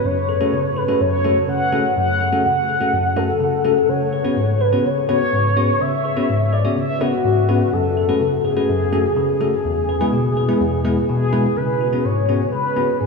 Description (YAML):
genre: pop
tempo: 125 BPM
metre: 4/4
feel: straight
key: F# minor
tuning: A4 = 441 Hz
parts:
  - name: mellow horn-like synth lead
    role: melody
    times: 0.0-13.1 s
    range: F#4 to F#5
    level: -19 LUFS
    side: left 1 dB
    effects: chorus, phaser, tape echo
  - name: bell-like tine electric piano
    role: accompaniment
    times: 0.0-13.1 s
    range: E2 to C#5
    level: -19 LUFS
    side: left 1 dB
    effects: none
room: wet cathedral reverb, RT60 6.2 s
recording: dreamy mix soaked in reverb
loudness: -16 LUFS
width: side -4 dB against mid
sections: 0.0-11.6 A section; 11.6-13.1 B section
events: none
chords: 0.0 F#madd9; 3.9 C#7sus4; 7.7 F#madd9; 9.6 E; 11.6 C#7sus4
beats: | 0.05 0.53 1.01 1.49 | 1.97 2.45 2.93 3.41 | 3.89 4.37 4.85 5.33 | 5.81 6.29 6.77 7.25 | 7.73 8.21 8.69 9.17 | 9.65 10.13 10.61 11.09 | 11.57 12.05 12.53 13.01